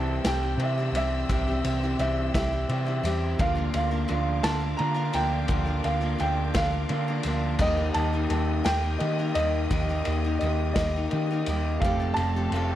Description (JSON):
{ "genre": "folk rock and heartland rock", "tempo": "57 BPM (dotted quarters)", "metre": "6/8", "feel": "straight", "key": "unclear", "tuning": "A4 = 439 Hz", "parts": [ { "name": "dark grand piano", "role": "melody", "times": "0.0-12.8 s", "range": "Eb5 to Bb5", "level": "-30 LUFS", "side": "right 2 dB", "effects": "dub echo" }, { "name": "mellow reed electric piano", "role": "accompaniment", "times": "0.0-12.8 s", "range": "F4 to G5", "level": "-41 LUFS", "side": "right 4 dB", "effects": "none" }, { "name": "picked steel-string acoustic guitar", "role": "accompaniment", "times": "0.0-12.8 s", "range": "C3 to Bb4", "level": "-35 LUFS", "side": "left 4 dB", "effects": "dub echo" }, { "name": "bright studio string section", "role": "sustained chords", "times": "0.0-12.8 s", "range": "G4 to E6", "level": "-40 LUFS", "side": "left 2 dB", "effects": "none" }, { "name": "electric guitar through a small old amp", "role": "riff", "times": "0.0-12.8 s", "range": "C3 to G4", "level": "-32 LUFS", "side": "equal", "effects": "dub echo" }, { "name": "hollow-body short-scale picked electric bass", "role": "bass", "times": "0.0-12.8 s", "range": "F1 to Eb3", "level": "-28 LUFS", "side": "equal", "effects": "none" }, { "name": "vintage drum kit", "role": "drums", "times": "0.2-12.7 s", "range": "crash cymbal, kick drum, ride cymbal, snare drum", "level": "-32 LUFS", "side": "equal", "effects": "none" } ], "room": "light reverb, small room ambience", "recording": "echo-heavy mix", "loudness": "-24 LUFS", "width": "side -12 dB against mid", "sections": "0.0-12.8 A section", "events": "none", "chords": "0.0 C; 3.4 Bb/D; 7.6 Eb; 11.8 Fadd9" }